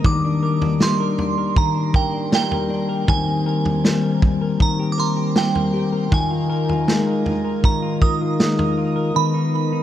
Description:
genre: dream pop.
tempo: 79 BPM.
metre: 4/4.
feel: straight.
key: Eb major.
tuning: A4 = 440 Hz.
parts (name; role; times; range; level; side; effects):
glassy synth bell; melody; 0.0-9.8 s; G5 to Eb6; -25 LUFS; right 5 dB; chorus, phaser, tape echo, shimmer reverb.
mellow tonewheel organ; sustained chords; 0.0-9.8 s; Eb3 to Bb4; -25 LUFS; right 1 dB; slow rotary speaker, shimmer reverb.
semi-hollow electric guitar; arpeggios; 0.0-9.8 s; Eb3 to Bb4; -21 LUFS; left 3 dB; wide subtle chorus, tape echo, shimmer reverb.
vintage drum kit; drums; 0.0-8.8 s; kick drum, snare drum, toms; -20 LUFS; equal; none.
room: light reverb, small room ambience.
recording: none.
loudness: -17 LUFS.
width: side -11 dB against mid.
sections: 0.0-9.8 A section.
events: none.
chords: 0.0 Ebmaj7; 3.1 Abmaj9/Eb; 6.1 Bb7sus4/Eb; 9.2 Abmadd9/Eb.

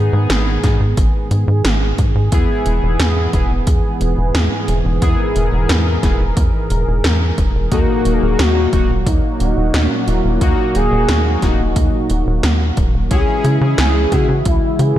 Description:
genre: synthwave.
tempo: 89 BPM.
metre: 4/4.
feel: straight.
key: unclear.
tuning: A4 = 440 Hz.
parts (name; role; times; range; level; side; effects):
warm analog pad; sustained chords; 0.0-15.0 s; G#2 to A#4; -22 LUFS; right 1 dB; chorus, sidechain pumping.
analog synth brass; stabs; 0.0-14.3 s; A#3 to G#4; -22 LUFS; left 3 dB; chorus, digital delay.
tight sequencer bass; bass; 0.0-15.0 s; D#1 to C#3; -16 LUFS; equal; sidechain pumping.
80s electronic pad drums; drums; 0.3-14.9 s; hi-hat, snare drum; -22 LUFS; equal; none.
electronic kick drum; drums; 0.6-14.6 s; none; -17 LUFS; equal; none.
expressive portamento lead; melody; 7.7-15.0 s; D#4 to A#4; -20 LUFS; equal; analog chorus, digital delay.
room: light reverb, digital ambience.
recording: dark, warm production.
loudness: -13 LUFS.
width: side -12 dB against mid.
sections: 0.0-15.0 A section.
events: none.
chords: 0.0 G#m; 2.3 E; 7.7 D#m; 13.1 C#m.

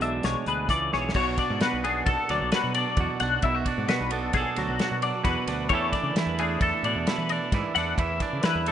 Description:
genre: math rock and midwest emo.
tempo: 132 BPM.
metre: 5/4.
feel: straight.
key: unclear.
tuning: A4 = 441 Hz.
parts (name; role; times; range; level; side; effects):
clean electric guitar; accompaniment; 0.0-8.7 s; B2 to D5; -28 LUFS; right 7 dB; none.
twelve-string electric guitar; arpeggios; 0.0-8.7 s; F#4 to F#5; -28 LUFS; left 8 dB; analog chorus.
fuzz fingered electric bass; bass; 0.0-8.7 s; B1 to E3; -32 LUFS; equal; overdrive.
loose indie drum kit; drums; 0.0-8.7 s; crash cymbal, hi-hat, kick drum, ride cymbal, snare drum; -30 LUFS; equal; none.
room: little or no reverb.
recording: rough home demo mix, nothing above 10.4 kHz.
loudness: -23 LUFS.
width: side -10 dB against mid.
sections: 0.0-1.2 A section; 1.2-8.7 B section.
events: drum fill 0.9.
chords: 0.0 E7; 1.2 Bm7.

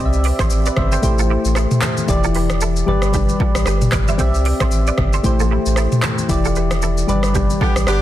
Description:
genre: afrobeats.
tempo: 114 BPM.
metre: 4/4.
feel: swing 58% on 16ths.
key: C major.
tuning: A4 = 442 Hz.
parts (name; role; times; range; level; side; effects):
soft electric-piano-like synth keys; accompaniment; 0.0-8.0 s; E3 to G5; -20 LUFS; left 2 dB; chorus.
direct-recorded clean electric guitar; riff; 0.0-8.0 s; D4 to E5; -27 LUFS; right 7 dB; ensemble chorus, tape echo.
warm sub bass; bass; 0.0-8.0 s; E1 to C2; -19 LUFS; equal; none.
afro-pop drum kit; drums; 0.1-8.0 s; handclaps, hi-hat, kick drum, rim click, shaker, toms; -19 LUFS; equal; overdrive.
congas; percussion; 0.4-7.6 s; none; -28 LUFS; left 2 dB; none.
warm horn section; second line; 7.6-8.0 s; B3 to G4; -21 LUFS; left 1 dB; tape echo.
room: little or no reverb.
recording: dense, heavily limited modern master.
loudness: -14 LUFS.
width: side -13 dB against mid.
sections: 0.0-8.0 A section.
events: band accent 6.3-8.0.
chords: 0.0 Cadd9; 1.0 Am7; 2.1 Em7; 2.9 G; 4.2 Cadd9; 5.2 Am7; 6.3 Em7; 7.1 G.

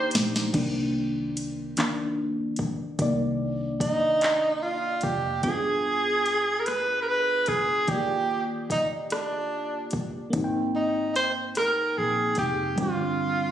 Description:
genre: slow six-eight R&B.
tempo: 49 BPM (dotted quarters).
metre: 6/8.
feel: straight.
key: C minor.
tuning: A4 = 441 Hz.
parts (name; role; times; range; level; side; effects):
breathy tenor saxophone; melody; 0.0-13.5 s; D4 to C5; -25 LUFS; right 2 dB; plate reverb, tape echo.
mellow FM electric piano; accompaniment; 0.0-13.5 s; G2 to G5; -29 LUFS; left 1 dB; chorus, plate reverb.
hollow soft pad; sustained chords; 0.0-0.5 s; C5 to D6; -41 LUFS; right 2 dB; chorus, plate reverb.
vintage muted fingered electric bass; bass; 0.1-5.4, 10.3-13.5 s; F1 to C2; -36 LUFS; equal; none.
smooth R&B drum kit; drums; 0.1-13.0 s; crash cymbal, handclaps, hi-hat, kick drum, rim click, snare drum; -29 LUFS; equal; overdrive.
room: moderate studio reverb, RT60 0.8 s.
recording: recorded on a phone in the room, studio reverb, compression.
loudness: -24 LUFS.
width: side -10 dB against mid.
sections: 0.5-5.4 A section; 5.4-13.5 B section.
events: drum fill 0.0-0.5; FM electric piano solo 0.5-5.4.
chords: 0.0 Cm9; 5.4 G7b9; 7.9 Ebmaj9; 10.3 Abmaj9; 12.8 G7sus4.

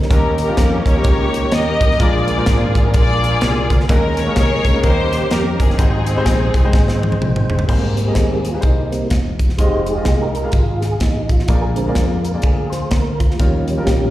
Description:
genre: uptempo gospel.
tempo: 126 BPM.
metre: 4/4.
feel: swing 60% on 8ths.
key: Ab major.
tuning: A4 = 440 Hz.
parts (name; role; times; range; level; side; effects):
mellow tonewheel organ; sustained chords; 0.0-14.1 s; D3 to G5; -23 LUFS; right 3 dB; slow rotary speaker, chorus vibrato.
fingered electric bass; bass; 0.0-14.1 s; Fb1 to F2; -20 LUFS; equal; none.
tight funk drum kit; drums; 0.0-14.0 s; crash cymbal, hi-hat, kick drum, snare drum, toms; -16 LUFS; equal; none.
rich studio string section; melody; 0.1-7.2 s; C4 to Eb5; -20 LUFS; left 1 dB; slapback echo.
clear grand piano; accompaniment; 0.1-14.1 s; Ab2 to G5; -24 LUFS; left 3 dB; slapback echo.
room: light reverb.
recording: live gig heard through the venue's PA, recital hall reverb.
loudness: -14 LUFS.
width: side -15 dB against mid.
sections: 0.0-7.7 A section; 7.7-14.1 B section.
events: drum fill 6.7-7.7; tonewheel organ solo 7.7-14.1.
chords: 0.0 Eb7; 2.0 Bb7; 3.9 Eb7sus4; 4.8 Eb7; 5.8 Abmaj7; 7.7 Abmaj9; 9.6 Fm9; 11.5 Bb7; 13.4 Eb9.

